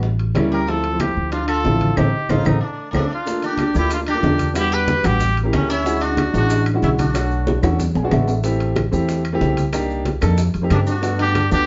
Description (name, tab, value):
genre	Afro-Cuban jazz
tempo	186 BPM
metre	4/4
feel	straight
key	unclear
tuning	A4 = 440 Hz
part	warm grand piano	accompaniment	0.0-11.7 s	F3 to G#5	-25 LUFS	equal	none
part	upright bass	bass	0.0-11.7 s	A1 to G2	-23 LUFS	equal	none
part	bongos	percussion	0.0-11.5 s	none	-31 LUFS	equal	none
part	congas	percussion	0.0-11.7 s	none	-28 LUFS	equal	none
part	timbales	percussion	0.2-11.5 s	none	-31 LUFS	equal	none
part	claves	percussion	0.4-11.5 s	none	-38 LUFS	equal	none
part	clear trumpet	melody	0.5-7.6, 10.7-11.7 s	C#4 to B4	-25 LUFS	equal	none
part	sitar	second line	0.5-7.6, 10.7-11.7 s	A3 to G4	-28 LUFS	equal	none
part	maracas	percussion	3.3-11.7 s	none	-42 LUFS	equal	none
room	moderate studio reverb, RT60 0.6 s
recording	heard from further back in the room, nothing above 7.6 kHz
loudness	-19 LUFS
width	mono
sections	0.0-3.3 A section; 3.3-11.7 B section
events	band accent 2.0-3.3; drum fill 2.6-3.3, 7.5-8.4; grand piano fill 7.8-8.4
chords	0.0 A7b9; 0.7 Dm9; 2.0 Am7b5; 2.6 D5; 3.3 Gm9; 4.6 Em7; 5.2 A7b9; 5.9 Dmaj9#11; 7.1 Bm9; 7.8 E7; 8.4 Am7; 9.7 Cm7; 10.4 F9; 11.0 Gmaj9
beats	0.04 0.36 | 0.68 1.00 1.33 1.65 | 1.98 2.30 2.62 2.94 | 3.27 3.59 3.91 4.24 | 4.56 4.88 5.21 5.53 | 5.85 6.18 6.50 6.82 | 7.15 7.47 7.79 8.12 | 8.44 8.76 9.09 9.41 | 9.73 10.06 10.38 10.71 | 11.03 11.35